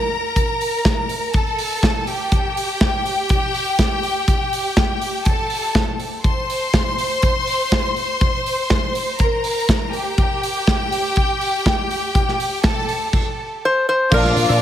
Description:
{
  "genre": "disco",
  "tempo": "122 BPM",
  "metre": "4/4",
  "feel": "straight",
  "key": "G minor",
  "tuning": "A4 = 440 Hz",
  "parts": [
    { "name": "bright studio string section", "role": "second line", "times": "0.0-14.6 s", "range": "F4 to C6", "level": "-21 LUFS", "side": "left 1 dB", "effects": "tape echo" },
    { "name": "modern studio drum kit", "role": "drums", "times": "0.4-14.5 s", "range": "crash cymbal, hi-hat, kick drum, snare drum", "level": "-19 LUFS", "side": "equal", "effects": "none" },
    { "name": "metal-body resonator slide guitar", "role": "melody", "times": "13.7-14.6 s", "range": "Bb4 to C5", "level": "-16 LUFS", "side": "left 1 dB", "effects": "none" },
    { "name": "electric guitar at the edge of break-up", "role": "accompaniment", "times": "14.1-14.6 s", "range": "Bb3 to A4", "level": "-24 LUFS", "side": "right 5 dB", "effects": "wah" },
    { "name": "percussive tonewheel organ", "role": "sustained chords", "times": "14.1-14.6 s", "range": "F3 to D4", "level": "-25 LUFS", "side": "equal", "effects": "none" },
    { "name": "warm horn section", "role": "stabs", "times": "14.1-14.6 s", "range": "D4 to D5", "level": "-22 LUFS", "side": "left 2 dB", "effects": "none" },
    { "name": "slap bass with an envelope filter", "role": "bass", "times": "14.1-14.6 s", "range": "Bb1 to Bb2", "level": "-18 LUFS", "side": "equal", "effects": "none" }
  ],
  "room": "light reverb, small room ambience",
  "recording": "none",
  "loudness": "-17 LUFS",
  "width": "side -11 dB against mid",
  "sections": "0.0-14.1 A section",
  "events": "none",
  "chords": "0.0 N.C.; 2.1 Gsus2; 6.2 Bbsus2; 9.9 Gsus2; 14.1 Bbmaj7"
}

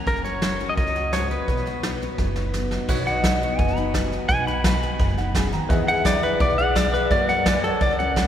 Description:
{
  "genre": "honky-tonk and classic country",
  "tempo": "171 BPM",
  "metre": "4/4",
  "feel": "straight",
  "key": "B major",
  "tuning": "A4 = 441 Hz",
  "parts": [
    { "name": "picked steel-string acoustic guitar", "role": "accompaniment", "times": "0.0-8.3 s", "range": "F#2 to A#4", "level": "-30 LUFS", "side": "left 4 dB", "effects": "none" },
    { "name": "pedal steel guitar", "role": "melody", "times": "0.1-8.3 s", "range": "A4 to B5", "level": "-24 LUFS", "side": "left 1 dB", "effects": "none" },
    { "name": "upright bass", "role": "bass", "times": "0.1-8.3 s", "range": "F#1 to F#2", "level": "-28 LUFS", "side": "equal", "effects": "none" },
    { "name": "soft brush drum kit", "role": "drums", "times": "0.1-8.2 s", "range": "crash cymbal, hi-hat, kick drum, snare drum", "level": "-24 LUFS", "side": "equal", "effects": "none" },
    { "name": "warm upright piano", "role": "accompaniment", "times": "2.9-8.3 s", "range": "F#4 to A#5", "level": "-35 LUFS", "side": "right 3 dB", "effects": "none" },
    { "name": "pedal steel guitar", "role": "sustained chords", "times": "2.9-8.3 s", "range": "A#4 to G#5", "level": "-30 LUFS", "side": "left 1 dB", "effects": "none" }
  ],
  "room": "wet cathedral reverb, RT60 5.0 s",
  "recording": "recorded in a church or concert hall",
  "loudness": "-19 LUFS",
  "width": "side -10 dB against mid",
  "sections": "0.0-2.9 A section; 2.9-8.3 B section",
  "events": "drum fill 2.2-2.9; pedal steel guitar solo 2.9-8.3; upright piano fill 5.0-5.7",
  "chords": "0.0 F#; 1.5 B; 5.7 E; 7.1 F#"
}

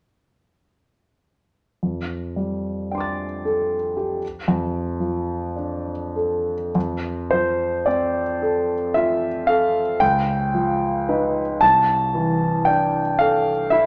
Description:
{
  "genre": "classical, impressionist solo piano",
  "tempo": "32-39 BPM (dotted quarters)",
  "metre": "9/8",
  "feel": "rubato",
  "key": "F major",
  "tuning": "A4 = 439 Hz",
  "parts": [
    { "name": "clear concert grand piano", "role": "solo", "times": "1.8-13.9 s", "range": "C2 to A6", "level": "-22 LUFS", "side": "equal", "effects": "none" }
  ],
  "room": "moderate large studio reverb, RT60 0.9 s",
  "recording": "none",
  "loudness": "-22 LUFS",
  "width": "mono",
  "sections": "1.8-6.7 A section; 6.7-13.9 B section",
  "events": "none",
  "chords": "1.8 F69; 4.2 F6; 6.7 F; 10.0 Db9; 11.6 C69"
}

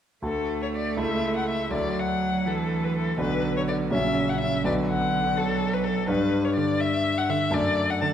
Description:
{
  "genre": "quick classical-period movement for piano trio",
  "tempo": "82 BPM (dotted quarters)",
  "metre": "6/8",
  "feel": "rubato",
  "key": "D major",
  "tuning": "A4 = 445 Hz",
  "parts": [
    { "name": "rich violin", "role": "melody", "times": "0.2-8.1 s", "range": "A4 to A5", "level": "-27 LUFS", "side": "left 4 dB", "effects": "none" },
    { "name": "rich cello", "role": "second line", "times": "0.2-8.1 s", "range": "C#3 to A3", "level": "-29 LUFS", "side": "right 6 dB", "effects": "none" },
    { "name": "bright concert grand piano", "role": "accompaniment", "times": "0.2-8.1 s", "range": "A#1 to D5", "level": "-26 LUFS", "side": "left 1 dB", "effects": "none" }
  ],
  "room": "wet scoring stage reverb, RT60 1.6 s",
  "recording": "none",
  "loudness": "-23 LUFS",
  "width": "side -9 dB against mid",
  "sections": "0.2-8.1 A section",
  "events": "none",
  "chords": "0.2 D; 1.0 A/C#; 1.7 D; 3.2 Bm; 3.9 F#/A#; 4.6 Bm; 6.1 G5; 7.5 D/F#"
}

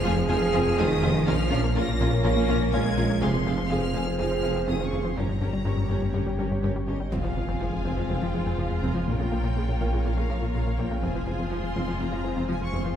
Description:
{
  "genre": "cinematic, hybrid orchestral and electronic film score",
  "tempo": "123 BPM",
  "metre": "4/4",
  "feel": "straight",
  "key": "F minor",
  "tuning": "A4 = 440 Hz",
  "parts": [
    { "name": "rich symphonic violin section", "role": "melody", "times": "0.0-13.0 s", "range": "Eb5 to Bb6", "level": "-37 LUFS", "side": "left 3 dB", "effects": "none" },
    { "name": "rich symphonic viola section", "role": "accompaniment", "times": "0.0-12.9 s", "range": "Db3 to Ab4", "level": "-33 LUFS", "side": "right 1 dB", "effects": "none" },
    { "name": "airy breathy pad", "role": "sustained chords", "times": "0.0-13.0 s", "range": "F3 to F5", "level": "-34 LUFS", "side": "equal", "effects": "chorus" },
    { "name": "mellow French horn section", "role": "sustained chords", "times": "0.0-12.9 s", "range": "C4 to Bb4", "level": "-32 LUFS", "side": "right 1 dB", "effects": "none" },
    { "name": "plucky analog bass", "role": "riff", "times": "0.0-12.9 s", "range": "F2 to Bb3", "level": "-30 LUFS", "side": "left 2 dB", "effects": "none" },
    { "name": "clear symphonic cello section", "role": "bass", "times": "0.0-12.9 s", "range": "F2 to Bb3", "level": "-33 LUFS", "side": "right 2 dB", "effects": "none" },
    { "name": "punchy sub bass", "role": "bass", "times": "0.0-13.0 s", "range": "F1 to Bb1", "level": "-32 LUFS", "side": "equal", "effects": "none" },
    { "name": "warm symphonic violin section", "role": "second line", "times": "0.1-12.9 s", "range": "Ab4 to Ab5", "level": "-36 LUFS", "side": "left 2 dB", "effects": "none" },
    { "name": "mellow tuba", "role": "bass", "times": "0.1-12.8 s", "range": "F1 to Bb1", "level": "-34 LUFS", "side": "right 2 dB", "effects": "none" },
    { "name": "rich symphonic double bass section", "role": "bass", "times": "0.1-12.8 s", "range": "F1 to Bb1", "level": "-33 LUFS", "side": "right 1 dB", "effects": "none" },
    { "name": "impact", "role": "sound effects", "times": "7.1-9.1 s", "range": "none", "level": "-35 LUFS", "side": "equal", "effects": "none" }
  ],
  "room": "wet recital hall reverb, RT60 1.5 s",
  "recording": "heard from further back in the room",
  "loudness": "-23 LUFS",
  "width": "side -9 dB against mid",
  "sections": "0.0-7.1 A section; 7.1-13.0 B section",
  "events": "impact 7.1-9.1",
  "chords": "0.0 Fm; 1.3 Bbm; 3.2 Fm; 5.2 Gdim; 7.1 Fm; 9.1 Bbm; 11.0 Fm"
}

